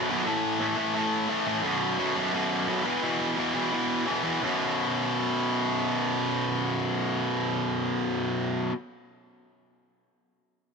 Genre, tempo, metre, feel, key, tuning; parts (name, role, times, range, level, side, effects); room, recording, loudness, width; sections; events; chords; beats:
metal; 172 BPM; 4/4; straight; A4 = 437 Hz
tight distorted guitar; riff; 0.0-8.7 s; B1 to A3; -25 LUFS; equal; distortion
light reverb; nothing above 10.3 kHz; -25 LUFS; side -5 dB against mid
0.0-4.4 A section; 4.4-7.2 B section
0.2 A5; 1.6 B5; 2.8 E5; 4.4 B5
| 0.24 0.59 0.94 1.28 | 1.63 1.98 2.33 2.67 | 3.02 3.37 3.72 4.07 | 4.42 4.76 5.11 5.46 | 5.81 6.16 6.51 6.86